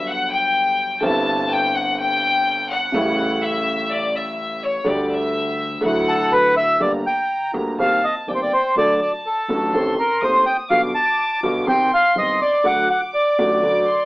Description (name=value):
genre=tango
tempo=124 BPM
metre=4/4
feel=rubato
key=G minor from 6.8 s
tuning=A4 = 440 Hz
part: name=clear chamber violin section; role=second line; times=0.0-14.1 s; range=C#5 to Eb6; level=-23 LUFS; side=left 2 dB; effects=none
part: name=warm grand piano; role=accompaniment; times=0.0-13.8 s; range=Eb1 to A4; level=-22 LUFS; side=equal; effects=none
part: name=upright bass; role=bass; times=0.0-13.8 s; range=G1 to Eb2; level=-40 LUFS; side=equal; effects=none
part: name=bandoneon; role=melody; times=6.1-14.1 s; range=A4 to A5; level=-17 LUFS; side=equal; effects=none
room=moderate studio reverb, RT60 0.8 s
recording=band playing live in one room, telephone sound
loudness=-17 LUFS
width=side -19 dB against mid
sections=0.0-6.8 A section; 6.8-14.1 B section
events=violin section solo 0.0-6.8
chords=0.0 Gmaj7; 1.0 Cadd9/G; 2.9 A7; 4.9 Dsus4; 5.8 Dadd9; 6.8 Gm; 7.8 Cm7; 8.8 D; 9.7 Adim; 10.7 G7/B; 11.7 Cm; 12.7 D